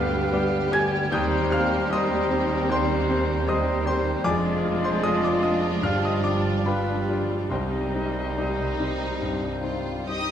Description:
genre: classical, romantic movement for piano and orchestra.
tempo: 69-78 BPM.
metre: 4/4.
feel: rubato.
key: C minor.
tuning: A4 = 440 Hz.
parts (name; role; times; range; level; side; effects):
clear grand piano; melody; 0.0-10.3 s; C2 to Ab6; -27 LUFS; left 2 dB; none.
rich studio violin section; melody; 0.0-10.3 s; Eb4 to Eb6; -36 LUFS; left 3 dB; none.
clear oboe; second line; 0.0-10.3 s; B4 to Ab5; -36 LUFS; right 2 dB; none.
silver concert flute; second line; 0.0-10.3 s; B4 to Eb6; -34 LUFS; equal; none.
warm clarinet; second line; 0.0-10.3 s; D4 to F4; -33 LUFS; left 4 dB; none.
warm symphonic violin section; second line; 0.0-10.3 s; B3 to Eb5; -34 LUFS; left 2 dB; none.
rich symphonic viola section; accompaniment; 0.0-10.3 s; G3 to Ab3; -33 LUFS; right 1 dB; none.
warm bassoon; accompaniment; 0.0-10.3 s; G3 to Ab3; -33 LUFS; right 2 dB; none.
mellow French horn section; sustained chords; 0.0-10.3 s; B3 to G4; -34 LUFS; left 4 dB; none.
mellow trombone section; sustained chords; 0.0-10.3 s; D3 to Ab3; -34 LUFS; right 3 dB; none.
dark symphonic double bass section; bass; 0.0-10.3 s; F1 to Eb2; -32 LUFS; right 3 dB; none.
rich symphonic cello section; bass; 0.0-10.3 s; D2 to Eb4; -31 LUFS; right 4 dB; none.
room: wet recital hall reverb, RT60 1.5 s.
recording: none.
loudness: -22 LUFS.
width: side -9 dB against mid.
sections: 0.0-10.3 A section.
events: none.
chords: 0.0 G7/D; 1.1 Cm/Eb; 4.3 Ddim/F; 5.8 G7; 7.5 Cm.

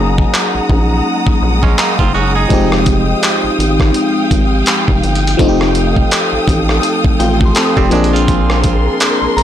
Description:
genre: contemporary R&B.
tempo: 83 BPM.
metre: 4/4.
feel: swing 58% on 16ths.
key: F dorian.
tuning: A4 = 440 Hz.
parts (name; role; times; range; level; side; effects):
FM electric piano; accompaniment; 0.0-9.4 s; F3 to A4; -16 LUFS; left 1 dB; chorus, phaser.
warm symphonic string section; sustained chords; 0.0-9.4 s; Ab3 to Eb6; -19 LUFS; equal; sidechain pumping.
rubbery square bass; bass; 0.0-9.4 s; F1 to Bb1; -16 LUFS; equal; transformer saturation.
glassy synth bell; texture; 0.0-1.6, 7.2-9.4 s; G5 to Eb6; -24 LUFS; left 2 dB; chorus, ping-pong delay.
dusty soul sampler-style drum kit; drums; 0.2-9.4 s; handclaps, hi-hat, kick drum, rim click; -14 LUFS; equal; soft clipping on snare.
direct-recorded clean electric guitar; arpeggios; 1.6-2.7, 7.8-9.2 s; G3 to Ab4; -19 LUFS; right 8 dB; ping-pong delay.
room: digital ambience.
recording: blown-out, overdriven recording, overdrive.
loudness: -10 LUFS.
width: side -10 dB against mid.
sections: 0.0-9.4 A section.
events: break 0.0-2.5.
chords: 0.0 Gb69; 2.5 Fm9; 5.4 F9; 7.9 Bb9.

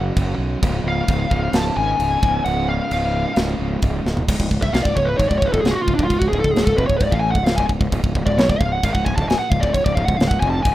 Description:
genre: heavy metal.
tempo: 132 BPM.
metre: 4/4.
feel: straight.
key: C# phrygian dominant.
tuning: A4 = 441 Hz.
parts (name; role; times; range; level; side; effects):
distorted electric guitar; riff; 0.0-10.7 s; C#2 to A3; -26 LUFS; equal; distortion.
fuzz fingered electric bass; bass; 0.0-10.7 s; C#1 to B1; -22 LUFS; equal; overdrive.
tight metal drum kit; drums; 0.2-10.7 s; crash cymbal, kick drum, snare drum, toms; -21 LUFS; equal; none.
high-gain lead guitar; melody; 0.9-10.7 s; D4 to A5; -21 LUFS; left 1 dB; distortion, digital delay.
room: light reverb.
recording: rough home demo mix.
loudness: -16 LUFS.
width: side -14 dB against mid.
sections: 0.0-4.3 A section; 4.3-10.7 B section.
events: half time 0.0-4.3; drum fill 4.0; lead electric guitar solo 4.3-10.7.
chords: 0.0 F#5; 0.6 C#.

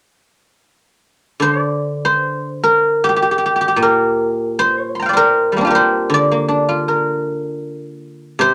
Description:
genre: chinese traditional, Chinese solo plucked strings.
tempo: 77 BPM.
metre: 4/4.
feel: rubato.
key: unclear.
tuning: A4 = 437 Hz.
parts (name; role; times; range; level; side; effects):
guzheng; solo; 1.4-8.5 s; Bb2 to C6; -16 LUFS; equal; none.
room: moderate studio reverb, RT60 0.5 s.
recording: none.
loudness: -16 LUFS.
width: mono.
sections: 1.4-8.5 A section.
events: none.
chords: none.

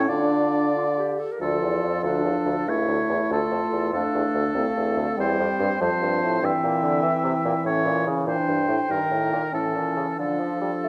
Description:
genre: quick classical-period movement for wind quintet.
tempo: 95 BPM (dotted quarters).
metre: 6/8.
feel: rubato.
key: D minor.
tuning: A4 = 441 Hz.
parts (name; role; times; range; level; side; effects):
mellow hollow concert flute; melody; 0.0-10.9 s; D5 to A5; -32 LUFS; equal; none.
warm oboe; second line; 0.0-10.9 s; A4 to E5; -31 LUFS; equal; none.
clear French horn; accompaniment; 0.0-10.9 s; Eb3 to D4; -31 LUFS; equal; none.
warm clarinet; accompaniment; 0.0-10.9 s; C4 to Bb4; -32 LUFS; equal; none.
mellow bassoon; bass; 0.0-10.9 s; C2 to A3; -28 LUFS; equal; none.
room: wet recital hall reverb, RT60 1.4 s.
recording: none.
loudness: -24 LUFS.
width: mono.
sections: 0.0-1.4 A section; 1.4-10.9 B section.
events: none.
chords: 0.1 Dm; 2.7 A/C#; 3.3 Dm; 3.9 F; 5.2 C/E; 5.8 F; 6.4 Edim/G; 7.7 A; 8.3 Bb; 8.9 Eb/G; 9.5 A; 10.2 Dm.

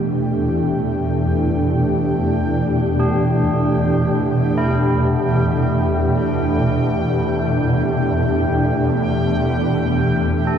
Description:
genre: dark ambient drone.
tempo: free time.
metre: none.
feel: none.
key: E minor.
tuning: A4 = 440 Hz.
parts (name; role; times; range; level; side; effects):
sweeping resonant pad; sustained chords; 0.0-10.6 s; C2 to G4; -19 LUFS; equal; chorus.
tubular bells; arpeggios; 0.0-10.6 s; D4 to A4; -28 LUFS; equal; ping-pong delay.
swarming drone; drone; 0.0-10.6 s; E2 to B2; -20 LUFS; right 1 dB; built-in reverb.
bubbling stepped-filter texture; texture; 0.0-10.6 s; G5; -30 LUFS; right 1 dB; chorus, built-in reverb.
room: wet huge ambient reverb, RT60 8.7 s.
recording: worn, warbling old tape, cassette tape, warbly pitch drift.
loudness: -16 LUFS.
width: side -8 dB against mid.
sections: 0.0-10.6 A section.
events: fade-in on synth texture 0.0-10.6; fade-in on tubular bells 0.0-10.6.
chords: 0.0 Em.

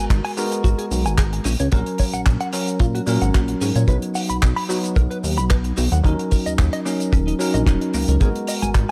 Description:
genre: nu-disco, nu disco.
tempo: 111 BPM.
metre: 4/4.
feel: straight.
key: F# major.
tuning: A4 = 440 Hz.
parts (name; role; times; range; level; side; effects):
bell-like tine electric piano; accompaniment; 0.0-8.9 s; F#3 to A#4; -26 LUFS; equal; phaser, sidechain pumping, analog delay.
direct-recorded clean electric guitar; riff; 0.0-8.7 s; A#3 to B5; -31 LUFS; equal; analog chorus, analog delay.
chorused synth bass; bass; 0.0-8.9 s; D#1 to A#2; -24 LUFS; equal; none.
damped 70s drum kit; drums; 0.1-8.9 s; handclaps, hi-hat, shaker; -31 LUFS; equal; analog delay.
kick drum; drums; 0.1-8.9 s; none; -20 LUFS; equal; none.
cabasa and congas; percussion; 8.2-8.9 s; none; -31 LUFS; equal; analog delay.
room: small room ambience.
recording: echo-heavy mix.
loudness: -20 LUFS.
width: mono.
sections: 0.0-8.9 A section.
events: none.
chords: 0.0 G#m9; 1.5 F#/A#; 3.9 B; 6.1 D#m7; 8.2 G#m9.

